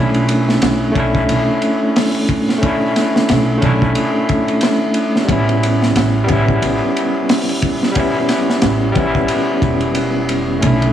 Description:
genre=trip hop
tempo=90 BPM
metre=4/4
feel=swing 58% on 16ths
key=unclear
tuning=A4 = 440 Hz
part: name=overdriven tine electric piano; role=accompaniment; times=0.0-10.9 s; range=G3 to E4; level=-16 LUFS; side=equal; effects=harmonic tremolo, vintage 12-bit sampler grit, tape echo
part: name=upright bass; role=bass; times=0.0-10.9 s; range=E1 to B1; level=-18 LUFS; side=right 1 dB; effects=none
part: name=crunchy breakbeat drum kit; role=drums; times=0.1-10.9 s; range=hi-hat, kick drum, ride cymbal, snare drum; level=-19 LUFS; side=equal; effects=none
part: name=string machine, cellos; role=sustained chords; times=10.6-10.9 s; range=none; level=barely audible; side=none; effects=none
room=small room ambience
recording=none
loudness=-13 LUFS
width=side -10 dB against mid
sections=0.0-10.9 A section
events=none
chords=0.0 Bm11; 5.3 A9

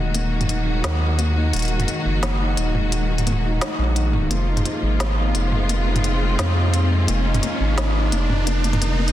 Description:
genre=half-time drum and bass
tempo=173 BPM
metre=4/4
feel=half-time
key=Eb dorian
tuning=A4 = 440 Hz
part: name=clear symphonic string section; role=sustained chords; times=0.0-9.1 s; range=C3 to Gb4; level=-27 LUFS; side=equal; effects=none
part: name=felt-muted upright piano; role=arpeggios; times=0.0-9.1 s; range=Eb3 to Eb4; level=-27 LUFS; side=left 3 dB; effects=low-pass filter, digital delay
part: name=saturated sub bass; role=bass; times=0.0-9.1 s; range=Eb1 to F2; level=-20 LUFS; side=equal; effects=none
part: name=riser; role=sound effects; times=1.7-9.1 s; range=none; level=-30 LUFS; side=right 1 dB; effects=none
part: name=organic electronic drum kit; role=drums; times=0.1-9.1 s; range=hi-hat, snare drum, toms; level=-26 LUFS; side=equal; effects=none
room=light reverb, digital ambience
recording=dense, heavily limited modern master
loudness=-18 LUFS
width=side -13 dB against mid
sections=0.0-9.1 A section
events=build-up 0.0-9.1; riser 1.7-9.1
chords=0.0 Ebm; 4.3 Fm

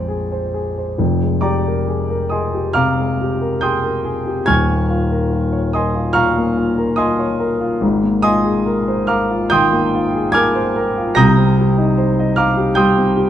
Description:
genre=classical, impressionist solo piano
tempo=71 BPM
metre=4/4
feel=uneven beats, rubato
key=F dorian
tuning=A4 = 440 Hz
part: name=warm concert grand piano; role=solo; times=0.0-13.3 s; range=Eb1 to Bb6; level=-14 LUFS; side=equal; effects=none
room=moderate large studio reverb, RT60 1.2 s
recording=dark, warm production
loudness=-14 LUFS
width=side -10 dB against mid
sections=0.0-1.0 A section; 1.0-13.3 B section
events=none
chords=0.0 Bb9; 1.0 Fm11; 4.5 Eb9sus4; 7.8 Ab69; 11.2 Cm7

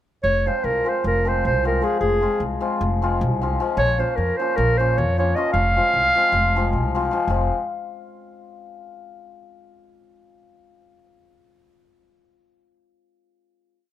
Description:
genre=balkan folk, Balkan wedding band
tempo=306 BPM (eighths)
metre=9/8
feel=straight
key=F minor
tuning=A4 = 440 Hz
part: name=mellow clarinet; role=melody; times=0.2-6.9 s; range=Ab4 to F5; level=-20 LUFS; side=right 1 dB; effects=plate reverb
part: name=upright bass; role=bass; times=0.2-7.5 s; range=F1 to F2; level=-23 LUFS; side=equal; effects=none
part: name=hammered dulcimer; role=accompaniment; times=0.5-7.5 s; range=F3 to F4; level=-25 LUFS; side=left 4 dB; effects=none
room=light reverb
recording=none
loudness=-18 LUFS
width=side -12 dB against mid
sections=0.2-7.3 A section; 7.3-9.0 final chord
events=none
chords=0.2 Fm; 3.8 Bbm; 5.5 Fm

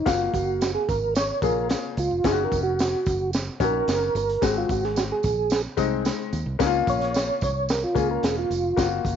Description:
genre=uptempo 1960s-style soul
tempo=110 BPM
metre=4/4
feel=straight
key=Db major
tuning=A4 = 444 Hz
part: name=percussive tonewheel organ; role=melody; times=0.0-8.9 s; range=F4 to Db5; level=-25 LUFS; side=right 3 dB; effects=chorus vibrato, slow rotary speaker
part: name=warm baby grand piano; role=accompaniment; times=0.1-9.2 s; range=Ab3 to F5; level=-26 LUFS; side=left 11 dB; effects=none
part: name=fingered electric bass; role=bass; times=0.1-9.2 s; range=Fb1 to Eb2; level=-30 LUFS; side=right 1 dB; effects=none
part: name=crunchy breakbeat drum kit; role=drums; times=0.1-9.2 s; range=hi-hat, kick drum, snare drum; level=-28 LUFS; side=right 1 dB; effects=none
part: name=tambourine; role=percussion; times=0.1-9.2 s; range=none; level=-38 LUFS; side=right 16 dB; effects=none
room=moderate spring reverb, RT60 1.8 s, small room ambience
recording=1960s-style stereo with parts hard left and right, nothing above 7.8 kHz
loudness=-21 LUFS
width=side -8 dB against mid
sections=0.0-9.2 A section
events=tonewheel organ solo 0.0-9.2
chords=0.1 Gbmaj7; 2.2 Ebm7; 4.4 Ab7; 6.6 Db6

